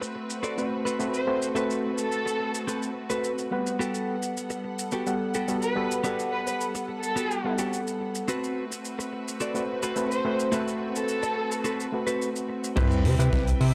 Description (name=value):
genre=nu-disco, nu disco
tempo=107 BPM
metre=4/4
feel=straight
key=A dorian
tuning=A4 = 440 Hz
part: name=bright symphonic string section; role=sustained chords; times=0.0-13.7 s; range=G3 to G5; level=-38 LUFS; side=equal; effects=sidechain pumping, low-pass filter
part: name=direct-recorded clean electric guitar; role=riff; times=0.0-13.5 s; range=B3 to D5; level=-35 LUFS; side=equal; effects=subtle chorus, low-pass filter, tape echo
part: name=tight funk drum kit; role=drums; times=0.0-13.7 s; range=crash cymbal, hi-hat, shaker, snare drum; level=-39 LUFS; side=equal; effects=none
part: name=overdriven reed electric piano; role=accompaniment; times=0.6-13.6 s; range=G3 to F#5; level=-32 LUFS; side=equal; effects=tape echo
part: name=warm symphonic violin section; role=melody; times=1.1-11.7 s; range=A4 to C5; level=-34 LUFS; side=equal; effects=tape echo
part: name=fat analog bass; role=bass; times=12.8-13.7 s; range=C2 to C3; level=-25 LUFS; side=equal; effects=none
part: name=kick drum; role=drums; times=12.8-13.4 s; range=none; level=-29 LUFS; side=equal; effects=none
part: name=sub drop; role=sound effects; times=12.8-13.7 s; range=none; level=-31 LUFS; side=equal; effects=none
room=light reverb, small room reverb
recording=none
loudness=-28 LUFS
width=mono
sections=0.0-12.8 A section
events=impact 12.8-13.7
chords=0.0 Am69; 3.8 Gmaj9; 8.3 Am69; 12.8 Cmaj7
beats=0.44 1.00 | 1.56 2.12 2.68 3.24 | 3.80 4.36 4.92 5.48 | 6.04 6.61 7.17 7.73 | 8.29 8.85 9.41 9.97 | 10.53 11.09 11.65 12.21 | 12.77 13.33